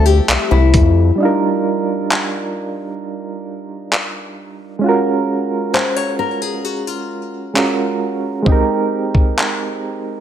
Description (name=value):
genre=contemporary R&B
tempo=66 BPM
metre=4/4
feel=straight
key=Eb major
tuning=A4 = 439 Hz
part: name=soft electric-piano-like synth keys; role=accompaniment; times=0.0-10.2 s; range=G3 to Bb4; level=-19 LUFS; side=right 3 dB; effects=chorus, tremolo
part: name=hollow soft pad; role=sustained chords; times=0.0-1.2 s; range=F3 to E5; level=-29 LUFS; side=left 2 dB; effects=chorus
part: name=nylon-string guitar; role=arpeggios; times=0.0-8.2 s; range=E4 to Db5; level=-19 LUFS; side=left 7 dB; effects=ping-pong delay
part: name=rubbery square bass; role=bass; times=0.0-1.1 s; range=C2 to F2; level=-12 LUFS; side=equal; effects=none
part: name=dusty soul sampler-style drum kit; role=drums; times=0.3-9.6 s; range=handclaps, hi-hat, kick drum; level=-17 LUFS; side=equal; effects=none
room=light reverb, digital ambience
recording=none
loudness=-15 LUFS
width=side -10 dB against mid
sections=0.0-1.2 A section; 1.2-10.2 B section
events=none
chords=0.0 Fmaj9; 1.2 Ebmaj9; 4.8 Gbmaj9; 8.5 Abmaj9